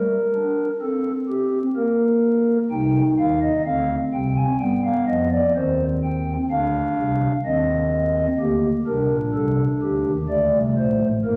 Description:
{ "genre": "classical, baroque-style 3-part fugue for pipe organ", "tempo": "63 BPM", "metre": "3/4", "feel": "straight", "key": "C minor", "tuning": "A4 = 440 Hz", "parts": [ { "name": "pipe organ, stopped flute", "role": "solo", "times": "0.0-11.4 s", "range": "G1 to Ab5", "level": "-21 LUFS", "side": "equal", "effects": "none" } ], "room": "wet recital hall reverb, RT60 1.4 s", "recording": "vinyl crackle, lossy compression artefacts", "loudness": "-21 LUFS", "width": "mono", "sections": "0.0-11.4 A section", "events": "none", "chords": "0.0 Gm; 1.8 N.C.; 2.7 Cm; 4.6 G7; 5.6 Cm/Eb; 8.4 Gm; 10.3 D5", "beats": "0.82 1.77 | 2.71 3.66 4.60 | 5.55 6.50 7.45 | 8.40 9.35 10.30 | 11.25" }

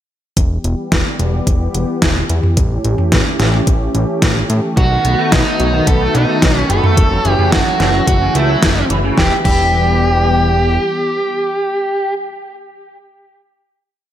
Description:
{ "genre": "synthwave", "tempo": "109 BPM", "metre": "4/4", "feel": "straight", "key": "E dorian", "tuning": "A4 = 442 Hz", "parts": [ { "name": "warm analog pad", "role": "sustained chords", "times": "0.4-12.1 s", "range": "D#3 to G4", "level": "-20 LUFS", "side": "left 1 dB", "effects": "wide subtle chorus, sidechain pumping" }, { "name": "fat analog bass", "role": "bass", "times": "0.4-10.8 s", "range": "E1 to A2", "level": "-17 LUFS", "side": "equal", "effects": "none" }, { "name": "electronic kick drum", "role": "drums", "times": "0.4-9.6 s", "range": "none", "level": "-16 LUFS", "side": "equal", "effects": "overdrive" }, { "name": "pop drum kit", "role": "drums", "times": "0.4-9.6 s", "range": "crash cymbal, hi-hat, snare drum, toms", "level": "-17 LUFS", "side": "equal", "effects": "overdrive" }, { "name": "smooth overdriven lead guitar", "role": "melody", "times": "4.8-12.1 s", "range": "D#4 to A4", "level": "-17 LUFS", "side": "right 1 dB", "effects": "tape echo, slapback echo" }, { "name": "electric guitar at the edge of break-up", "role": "arpeggios", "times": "4.8-9.6 s", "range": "C#3 to B3", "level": "-21 LUFS", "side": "right 2 dB", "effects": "ensemble chorus, tape echo, slapback echo" } ], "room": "moderate recital hall reverb, RT60 1.6 s, digital ambience", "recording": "big arena sound", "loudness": "-12 LUFS", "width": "side -11 dB against mid", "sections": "0.4-9.2 verse; 9.2-11.4 final chord", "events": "none", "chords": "0.4 Em; 2.6 A7; 4.8 B7; 7.0 F#m7; 9.2 Em", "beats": "| 0.37 0.92 1.47 2.02 | 2.57 3.12 3.67 4.22 | 4.77 5.32 5.87 6.42 | 6.97 7.52 8.07 8.62 | 9.18 9.73 10.28 10.83" }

